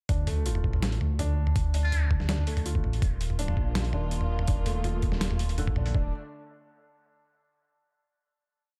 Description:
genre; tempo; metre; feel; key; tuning
half-time drum and bass; 164 BPM; 4/4; half-time; D phrygian; A4 = 440 Hz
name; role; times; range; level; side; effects
felt-muted upright piano; arpeggios; 0.1-6.1 s; D3 to F4; -41 LUFS; equal; dub echo
dark detuned saw bass; bass; 0.1-6.1 s; D1 to D2; -30 LUFS; equal; none
boom bap sampler-style drum kit; drums; 0.1-5.9 s; hi-hat, snare drum, toms; -34 LUFS; equal; overdrive
electronic kick drum; drums; 0.1-6.0 s; none; -30 LUFS; equal; overdrive
trumpet with metal mute; melody; 1.8-2.1 s; F4; -40 LUFS; equal; dub echo
dark studio string section; sustained chords; 3.0-6.1 s; D3 to F4; -41 LUFS; equal; sidechain pumping
room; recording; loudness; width
studio ambience; none; -28 LUFS; mono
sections
0.1-5.9 drop; 5.9-7.4 final chord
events
drop 0.1-5.9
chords
0.1 Dm; 3.0 Eb5; 5.9 D5

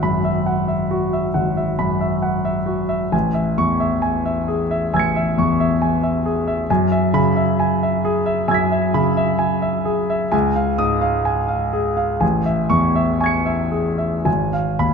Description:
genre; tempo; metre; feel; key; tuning
classical, impressionist solo piano; 55-69 BPM; 4/4; rubato; unclear; A4 = 440 Hz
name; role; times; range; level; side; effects
clear concert grand piano; solo; 0.0-14.9 s; G#1 to C#7; -17 LUFS; equal; none
room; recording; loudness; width
moderate scoring stage reverb, RT60 1.6 s; none; -17 LUFS; side -5 dB against mid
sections
0.0-14.9 A section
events
none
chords
0.0 F#9sus4/G#; 3.1 Amaj7; 6.7 F#9sus4; 10.3 C#add9; 12.2 Amaj7; 14.3 G#m6

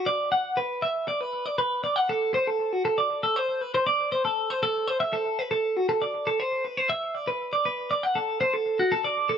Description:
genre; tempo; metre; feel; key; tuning
rock; 79 BPM (dotted quarters); 6/8; straight; unclear; A4 = 440 Hz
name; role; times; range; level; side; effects
twelve-string electric guitar; solo; 0.0-9.4 s; F#4 to F#5; -24 LUFS; equal; analog delay
room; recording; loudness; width
wet studio reverb, RT60 0.6 s; none; -24 LUFS; side -8 dB against mid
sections
0.8-9.4 A section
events
none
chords
none

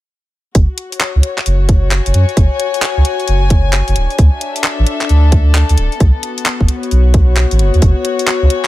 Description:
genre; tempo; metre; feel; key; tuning
UK garage, two-step garage; 132 BPM; 4/4; swing 64% on 16ths; F# minor; A4 = 440 Hz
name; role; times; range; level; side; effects
garage drum kit; drums; 0.5-8.7 s; handclaps, hi-hat; -18 LUFS; equal; none
soft dub sub bass; bass; 0.6-8.5 s; D1 to F#2; -11 LUFS; equal; none
electronic kick drum; drums; 0.6-7.9 s; none; -11 LUFS; equal; none
warm chamber string section; texture; 0.6-8.7 s; B3 to G#5; -19 LUFS; left 5 dB; sidechain pumping
room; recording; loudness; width
little or no reverb; none; -10 LUFS; side -16 dB against mid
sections
0.6-8.7 A section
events
none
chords
0.6 F#5; 4.0 Dmaj9; 6.0 B7sus2; 7.8 F#5

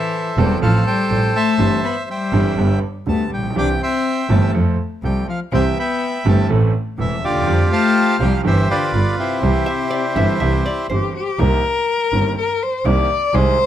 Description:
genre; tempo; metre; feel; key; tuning
tango; 123 BPM; 4/4; rubato; C major; A4 = 440 Hz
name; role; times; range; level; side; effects
bandoneon; melody; 0.0-10.9 s; E4 to D6; -20 LUFS; equal; none
clear cello; second line; 0.0-13.7 s; C3 to D5; -21 LUFS; left 4 dB; none
clear concert grand piano; accompaniment; 0.4-13.6 s; E1 to A4; -22 LUFS; right 4 dB; none
clear double bass; bass; 0.4-13.5 s; E1 to F2; -19 LUFS; right 1 dB; none
archtop guitar, miked and amplified; second line; 9.7-11.4 s; C5 to E5; -26 LUFS; equal; none
room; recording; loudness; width
light reverb; close, detailed microphones; -15 LUFS; side -11 dB against mid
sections
0.0-11.4 A section; 11.4-13.7 B section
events
cello solo 11.4-13.7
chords
0.0 Am; 0.6 F/A; 1.6 C/G; 2.6 G; 3.6 C; 4.5 F; 5.5 C; 6.5 Am; 7.5 Fsus2; 8.4 C/G; 8.9 G7; 9.4 C; 11.4 Cm7

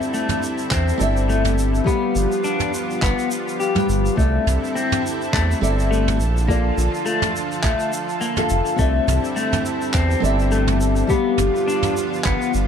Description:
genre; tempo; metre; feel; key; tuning
sunset chillout; 104 BPM; 4/4; swing 56% on 16ths; C major; A4 = 439 Hz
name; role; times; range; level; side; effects
nylon-string guitar; accompaniment; 0.0-12.7 s; G3 to G5; -23 LUFS; moving between left 6 dB and right 4 dB; auto-pan, ping-pong delay
lush unison pad; sustained chords; 0.0-12.7 s; D3 to A4; -26 LUFS; right 1 dB; chorus
soft brush drum kit; drums; 0.0-12.7 s; handclaps, shaker, toms; -27 LUFS; right 3 dB; none
electric guitar at the edge of break-up; arpeggios; 0.1-12.5 s; A3 to G4; -25 LUFS; left 5 dB; phaser, ping-pong delay
round analog bass; bass; 0.7-12.7 s; F1 to E2; -20 LUFS; right 1 dB; none
electronic kick drum; drums; 0.7-12.4 s; none; -22 LUFS; right 1 dB; none
room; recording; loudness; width
light reverb, small room ambience; dark, warm production; -17 LUFS; side -8 dB against mid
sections
0.0-12.7 A section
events
none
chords
0.0 C69; 1.9 G7; 4.2 C69; 6.2 Bbmaj7; 8.8 C69; 11.1 G7

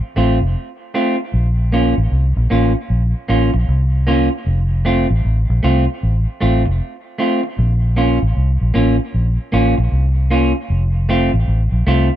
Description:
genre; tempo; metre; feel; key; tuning
roots reggae; 77 BPM; 4/4; swing 63% on 16ths; Bb harmonic minor; A4 = 441 Hz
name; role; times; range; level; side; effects
semi-hollow electric guitar; accompaniment; 0.2-12.1 s; A3 to F4; -19 LUFS; right 1 dB; dub echo
vintage muted fingered electric bass; bass; 0.2-12.1 s; F1 to C2; -15 LUFS; equal; none
room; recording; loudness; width
little or no reverb; dry, close 1970s-style studio recording; -14 LUFS; side -12 dB against mid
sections
0.0-12.2 A section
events
none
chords
0.0 F; 1.3 Bbm; 4.5 F; 7.6 Bbm; 10.7 F

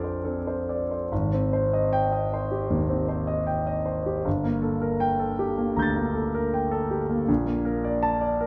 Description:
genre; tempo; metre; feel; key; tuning
classical, impressionist solo piano; 67-82 BPM; 4/4; rubato; unclear; A4 = 440 Hz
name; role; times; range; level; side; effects
clear concert grand piano; solo; 0.0-8.5 s; G1 to D7; -26 LUFS; equal; none
room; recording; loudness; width
wet recital hall reverb, RT60 1.4 s; none; -26 LUFS; mono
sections
0.0-1.1 A section; 1.1-8.5 B section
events
none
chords
0.0 Bbmaj9; 1.1 Abmaj7; 4.3 Gmadd9; 7.3 Bbmaj7

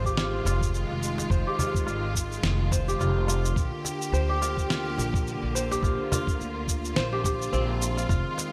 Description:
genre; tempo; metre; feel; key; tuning
organic downtempo; 106 BPM; 4/4; swing 57% on 16ths; unclear; A4 = 440 Hz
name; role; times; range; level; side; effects
clear studio string section; sustained chords; 0.0-8.5 s; D3 to G4; -35 LUFS; equal; sidechain pumping
kora; arpeggios; 0.0-8.5 s; C4 to C5; -33 LUFS; equal; low-pass filter, digital delay
upright bass; bass; 0.0-8.2 s; F1 to D2; -31 LUFS; equal; sidechain pumping
electronic kick drum; drums; 0.0-8.2 s; none; -30 LUFS; equal; none
electronic shaker and snare drum; drums; 0.1-8.5 s; none; -34 LUFS; equal; gated reverb
cajon; percussion; 0.5-8.5 s; none; -35 LUFS; equal; none
room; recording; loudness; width
light reverb; bright 1980s-style digital production; -27 LUFS; mono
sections
0.0-8.5 A section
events
filter sweep on kora 0.0-8.5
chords
0.0 Fm7; 3.6 Bb6

